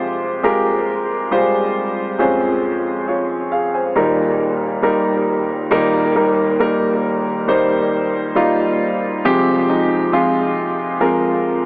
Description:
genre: pop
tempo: 68 BPM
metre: 4/4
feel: straight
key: unclear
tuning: A4 = 440 Hz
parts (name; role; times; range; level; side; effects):
- clear concert grand piano; solo; 0.0-11.7 s; Eb2 to Ab5; -15 LUFS; equal; analog delay
room: wet huge ambient reverb, RT60 4.5 s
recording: dreamy mix soaked in reverb, cassette tape, AM radio sound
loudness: -15 LUFS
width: side -25 dB against mid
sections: 0.0-5.7 A section; 5.7-11.7 B section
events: none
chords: 0.0 Fmadd9; 2.2 Dbmaj7/F; 4.0 Eb; 9.2 Fmadd9

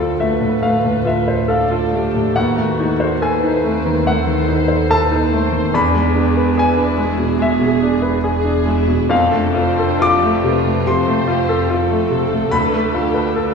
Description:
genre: classical, romantic movement for piano and orchestra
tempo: 71 BPM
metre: 4/4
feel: rubato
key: unclear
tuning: A4 = 442 Hz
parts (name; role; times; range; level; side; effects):
- clear baby grand piano; melody; 0.0-13.5 s; D2 to D6; -16 LUFS; left 1 dB; none
- warm studio violin section; second line; 0.0-13.5 s; A3 to B#4; -25 LUFS; left 2 dB; none
- dark symphonic viola section; accompaniment; 0.0-13.5 s; F#4 to B#4; -24 LUFS; equal; none
- dark symphonic double bass section; bass; 0.0-13.5 s; E1 to D#2; -24 LUFS; right 3 dB; none
- warm symphonic cello section; bass; 0.0-13.5 s; D2 to F2; -25 LUFS; right 4 dB; none
room: wet scoring stage reverb, RT60 1.9 s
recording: heard from further back in the room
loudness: -14 LUFS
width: side -5 dB against mid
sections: 0.0-13.5 A section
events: none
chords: 0.0 Dm7; 2.4 D#dim7; 5.8 E7; 9.1 F; 12.5 Bm7b5/D

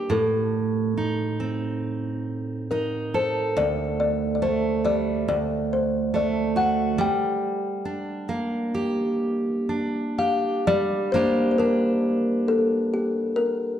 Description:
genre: celtic folk, Celtic slow air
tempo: 60-71 BPM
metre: 4/4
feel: rubato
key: G minor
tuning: A4 = 442 Hz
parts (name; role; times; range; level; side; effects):
- kalimba; melody; 0.0-13.8 s; G4 to G5; -25 LUFS; left 4 dB; slapback echo
- fingerpicked steel-string acoustic guitar; accompaniment; 0.0-13.8 s; D2 to A4; -24 LUFS; right 3 dB; none
room: wet recital hall reverb, RT60 1.6 s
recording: dark, warm production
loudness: -22 LUFS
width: side -10 dB against mid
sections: 0.0-10.7 A section; 10.7-13.8 B section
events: none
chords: 0.1 Adim; 3.6 Dsus4; 5.3 D; 7.0 Gm

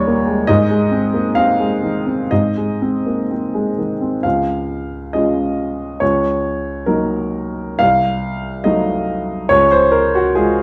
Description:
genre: classical, romantic character piece for solo piano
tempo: 59-74 BPM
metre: 2/4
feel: rubato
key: Db major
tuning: A4 = 440 Hz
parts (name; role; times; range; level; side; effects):
- warm upright piano; solo; 0.0-10.6 s; C2 to F5; -17 LUFS; equal; none
room: wet large studio reverb, RT60 1.5 s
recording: dark, warm production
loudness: -17 LUFS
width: mono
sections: 0.0-4.2 A section; 4.2-10.6 B section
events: none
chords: 0.5 Ab; 4.2 Db; 6.0 Ebm7/Db; 7.8 Cdim7; 9.5 Db

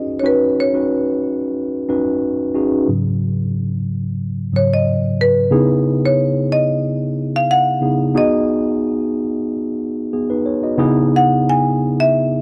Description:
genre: soul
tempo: 91 BPM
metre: 4/4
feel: swing 54% on 16ths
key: C# minor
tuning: A4 = 436 Hz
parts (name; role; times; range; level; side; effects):
- marimba with medium hard mallets; melody; 0.0-12.4 s; B4 to G#5; -20 LUFS; equal; none
- mellow tine electric piano; accompaniment; 0.0-12.4 s; G#2 to D#5; -19 LUFS; equal; tube saturation
room: light reverb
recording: none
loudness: -17 LUFS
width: mono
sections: 0.0-2.9 A section; 2.9-5.5 B section; 5.5-12.4 C section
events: tine electric piano solo 2.9-5.5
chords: 0.0 G#7sus4; 5.5 C#m7; 8.2 G#m7; 10.8 C#m7

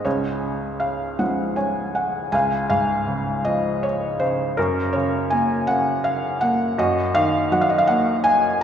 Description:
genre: classical, lyrical solo piano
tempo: 54 BPM (dotted quarters)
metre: 6/8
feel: rubato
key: Db major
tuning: A4 = 436 Hz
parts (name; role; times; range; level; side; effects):
- felt-muted upright piano; solo; 0.0-8.6 s; Db2 to Ab5; -19 LUFS; equal; none
room: wet church reverb, RT60 3.0 s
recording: recorded in a church or concert hall, faint mains hum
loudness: -19 LUFS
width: side -8 dB against mid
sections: 0.0-2.3 A section; 2.3-8.6 A section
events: felt piano fill 1.2-2.3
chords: 0.1 Db; 4.6 Gb; 6.8 Ebm/Gb

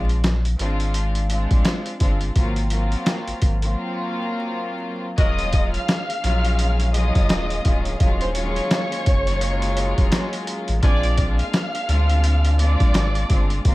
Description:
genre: hip hop, boom-bap hip-hop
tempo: 85 BPM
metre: 4/4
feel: swing 60% on 16ths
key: Eb dorian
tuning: A4 = 438 Hz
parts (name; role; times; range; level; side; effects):
- warm studio string section; accompaniment; 0.0-13.7 s; Gb3 to F4; -27 LUFS; left 1 dB; high-pass filter, low-pass filter
- warm sub bass; bass; 0.0-13.7 s; D1 to D2; -21 LUFS; equal; none
- boom bap sampler-style drum kit; drums; 0.1-13.7 s; hi-hat, kick drum, rim click, snare drum; -21 LUFS; equal; none
- dark symphonic violin section; melody; 5.2-13.6 s; C5 to F6; -27 LUFS; equal; high-pass filter, low-pass filter, digital delay
- warm studio string section; sustained chords; 5.2-13.7 s; Eb3 to F5; -35 LUFS; equal; high-pass filter, low-pass filter
- bright horn section; stabs; 5.2-5.4, 10.8-11.1 s; Bb3 to Bb4; -33 LUFS; equal; high-pass filter, low-pass filter, digital delay
room: little or no reverb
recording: vinyl crackle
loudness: -18 LUFS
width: side -19 dB against mid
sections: 0.0-5.2 A section; 5.2-13.7 B section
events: break 3.8-5.2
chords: 0.0 Bb9; 2.4 Ab13; 5.2 Ebm11; 10.8 Bb9

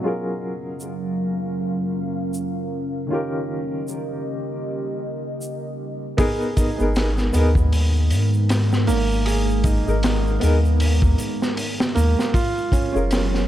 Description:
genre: trip hop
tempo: 78 BPM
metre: 4/4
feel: swing 58% on 16ths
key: G# dorian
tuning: A4 = 438 Hz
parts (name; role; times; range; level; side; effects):
- dark upright piano; accompaniment; 0.0-13.5 s; D#3 to A#4; -26 LUFS; equal; tremolo, vintage 12-bit sampler grit, tape echo
- deep dark ambient pad; sustained chords; 0.0-13.5 s; F#3 to E#5; -27 LUFS; right 1 dB; chorus, built-in reverb
- egg shaker; percussion; 0.8-13.5 s; none; -41 LUFS; right 1 dB; none
- felt-muted upright piano; arpeggios; 6.2-13.5 s; A#3 to G#4; -26 LUFS; right 4 dB; digital delay
- crunchy breakbeat drum kit; drums; 6.2-13.5 s; hi-hat, kick drum, snare drum; -23 LUFS; equal; none
- soft dub sub bass; bass; 6.8-13.5 s; F#1 to G#2; -19 LUFS; equal; none
room: small room ambience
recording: dark, warm production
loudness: -19 LUFS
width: side -12 dB against mid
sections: 0.0-6.2 A section; 6.2-13.5 B section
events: none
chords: 0.0 F#maj7; 3.1 D#7; 6.2 G#madd9; 12.3 F#maj7

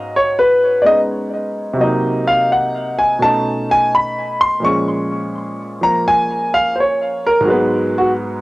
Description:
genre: solo jazz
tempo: 85 BPM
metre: 4/4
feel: swing 69% on 8ths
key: unclear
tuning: A4 = 441 Hz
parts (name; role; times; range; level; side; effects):
- clear concert grand piano; solo; 0.0-8.4 s; G#2 to C#6; -14 LUFS; equal; cassette tape, tape echo
room: wet booth ambience, RT60 0.2 s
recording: home recording on cassette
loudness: -14 LUFS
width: side -20 dB against mid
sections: 0.0-8.4 A section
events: grand piano solo 0.0-8.4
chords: 0.0 G#m7; 1.8 Cm7b5; 3.2 B9; 4.6 A#m7; 7.5 G#m7

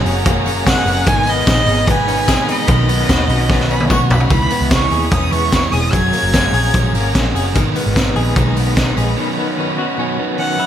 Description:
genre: jangly indie pop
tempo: 148 BPM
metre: 4/4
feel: straight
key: G# minor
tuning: A4 = 437 Hz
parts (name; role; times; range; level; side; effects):
- crunchy overdriven guitar; accompaniment; 0.0-10.7 s; G#2 to A#4; -21 LUFS; right 8 dB; spring reverb
- warm studio string section; sustained chords; 0.0-10.7 s; F#4 to B5; -26 LUFS; left 4 dB; none
- direct-recorded clean electric guitar; arpeggios; 0.0-10.7 s; D#3 to G#4; -22 LUFS; left 6 dB; tremolo
- vintage muted picked electric bass; bass; 0.0-9.1 s; E1 to E2; -18 LUFS; equal; none
- raw garage drum kit; drums; 0.1-9.1 s; hi-hat, kick drum, ride cymbal, snare drum, toms; -17 LUFS; equal; none
- tambourine; percussion; 0.1-9.1 s; none; -35 LUFS; left 4 dB; none
- warm violin; melody; 0.7-7.1, 10.4-10.7 s; D#5 to G#6; -19 LUFS; right 1 dB; ping-pong delay
room: moderate studio reverb, RT60 0.5 s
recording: none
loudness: -13 LUFS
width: side -10 dB against mid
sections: 0.0-4.3 A section; 4.3-10.7 B section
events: drum fill 3.5-4.3; break 9.2-10.7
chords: 0.0 F#add9; 1.1 G#m; 2.7 Badd9; 4.3 C#m7; 5.9 F#add9; 7.6 G#m; 9.2 Badd9

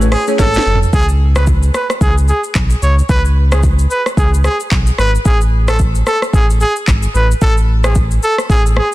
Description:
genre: afrobeats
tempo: 111 BPM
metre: 4/4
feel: swing 58% on 16ths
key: C# minor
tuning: A4 = 440 Hz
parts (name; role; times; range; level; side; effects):
- glassy digital keys; accompaniment; 0.0-0.5 s; A3 to G#4; -19 LUFS; left 4 dB; chorus
- balafon; riff; 0.0-0.5 s; B4 to C#5; -23 LUFS; right 9 dB; tape echo
- sub bass with octave; bass; 0.0-8.8 s; F#1 to C#2; -13 LUFS; equal; none
- afro-pop drum kit; drums; 0.0-8.9 s; handclaps, hi-hat, kick drum, rim click, shaker, snare drum, toms; -15 LUFS; equal; soft clipping on snare, vintage 12-bit sampler grit
- clear trumpet; melody; 0.1-8.9 s; G#4-21c to C#5; -18 LUFS; right 1 dB; tape echo
room: little or no reverb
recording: dense, heavily limited modern master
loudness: -10 LUFS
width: side -17 dB against mid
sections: 0.9-8.9 A section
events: drum fill 0.4-0.9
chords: 0.0 Amaj7; 0.9 C#5; 5.3 F#madd9 (rootless)

